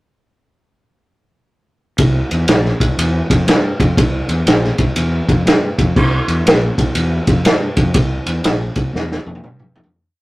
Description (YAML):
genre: blues rock power trio and southern rock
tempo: 121 BPM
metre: 4/4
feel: swing 64% on 8ths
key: C mixolydian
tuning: A4 = 442 Hz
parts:
  - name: fuzz fingered electric bass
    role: bass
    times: 2.0-9.9 s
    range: Bb1 to G2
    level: -18 LUFS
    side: equal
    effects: overdrive
  - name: vintage drum kit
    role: drums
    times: 2.0-9.9 s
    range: crash cymbal, kick drum, ride cymbal, snare drum, toms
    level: -14 LUFS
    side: equal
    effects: none
room: light reverb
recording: rough rehearsal-room recording, tube saturation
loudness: -13 LUFS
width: side -19 dB against mid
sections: 2.0-9.9 riff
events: fade-out 8.0-9.9; drum fill 8.9-9.9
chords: none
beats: | 1.99 2.48 2.98 3.48 | 3.98 4.47 4.97 5.47 | 5.96 6.46 6.96 7.46 | 7.95 8.45 8.95 9.44